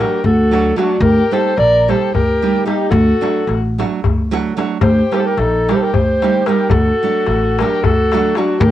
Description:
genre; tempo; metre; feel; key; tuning
balkan folk, Balkan wedding band; 221 BPM (eighths); 7/8; straight; D phrygian dominant; A4 = 442 Hz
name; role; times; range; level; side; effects
mellow clarinet; melody; 0.0-8.7 s; F#4 to D5; -16 LUFS; equal; cassette tape
dark violin; second line; 0.0-8.7 s; D4 to Bb4; -22 LUFS; left 8 dB; cassette tape
nylon-string guitar; accompaniment; 0.0-8.6 s; F#3 to G4; -19 LUFS; right 7 dB; cassette tape
upright bass; bass; 0.2-8.7 s; A1 to D2; -16 LUFS; equal; none
darbuka; percussion; 0.2-8.7 s; none; -21 LUFS; left 4 dB; none
room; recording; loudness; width
moderate studio reverb, RT60 0.5 s; home recording on cassette; -12 LUFS; side -13 dB against mid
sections
0.0-8.7 A section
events
none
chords
0.0 D; 1.0 Eb; 2.9 D; 4.8 Eb; 6.7 D

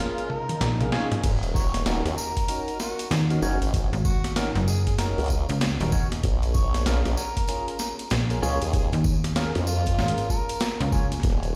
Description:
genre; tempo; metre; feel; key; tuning
glitch hop; 96 BPM; 4/4; swing 62% on 16ths; unclear; A4 = 442 Hz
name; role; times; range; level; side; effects
overdriven harmonica; melody; 0.0-10.8 s; Db4 to Db5; -36 LUFS; equal; dub echo
bell-like tine electric piano; stabs; 0.0-11.1 s; Db4 to Db5; -35 LUFS; equal; phaser, sidechain pumping, dub echo
swell; sound effects; 0.3-1.2 s; none; -42 LUFS; equal; none
boom bap sampler-style drum kit; drums; 0.2-11.5 s; crash cymbal, hi-hat, snare drum, toms; -33 LUFS; equal; none
slap-like FM bass; bass; 0.6-11.2 s; Eb1 to Eb2; -27 LUFS; equal; tube saturation
formant-sweep wobble bass; bass; 1.2-11.6 s; Eb1 to F2; -27 LUFS; equal; chorus
electronic kick drum; drums; 1.2-11.4 s; none; -27 LUFS; equal; none
tambourine; percussion; 1.2-11.5 s; none; -40 LUFS; equal; none
room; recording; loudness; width
light reverb; played on a big sound system in a bare room, large studio reverb; -25 LUFS; mono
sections
0.0-11.6 A section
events
break 0.0-1.2; swell 0.3-1.2; drum fill 0.3-1.2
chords
0.0 Bbm7; 1.2 Ebm7; 6.2 Bbm7

